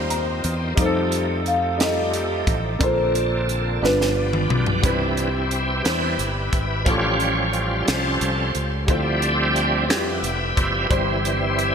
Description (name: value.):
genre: slow gospel.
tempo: 59 BPM (dotted quarters).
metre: 6/8.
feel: straight.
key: C major from 4.8 s.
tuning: A4 = 440 Hz.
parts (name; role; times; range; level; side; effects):
marimba with soft mallets; melody; 0.0-4.8 s; D4 to F5; -24 LUFS; equal; none.
warm upright piano; accompaniment; 0.0-11.7 s; G2 to Bb5; -27 LUFS; left 1 dB; analog chorus.
bright tonewheel organ; sustained chords; 0.0-11.7 s; D3 to E5; -24 LUFS; right 1 dB; chorus vibrato, slow rotary speaker.
fingered electric bass; bass; 0.0-11.7 s; F1 to F2; -26 LUFS; equal; none.
crisp fusion drum kit; drums; 0.1-11.7 s; hi-hat, kick drum, snare drum, toms; -24 LUFS; equal; none.
room: moderate lush hall reverb, RT60 3.2 s.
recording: bright 1980s-style digital production.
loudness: -19 LUFS.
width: side -7 dB against mid.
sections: 0.0-4.8 A section; 4.8-11.7 B section.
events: upright piano fill 0.0-0.8; drum fill 3.8-4.8; tonewheel organ solo 4.8-11.7.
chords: 0.0 Eb69; 0.8 F9; 2.8 Bbmaj9; 3.8 G7; 4.8 Cmaj7; 6.9 A7alt; 8.9 Dm11; 10.9 C/G.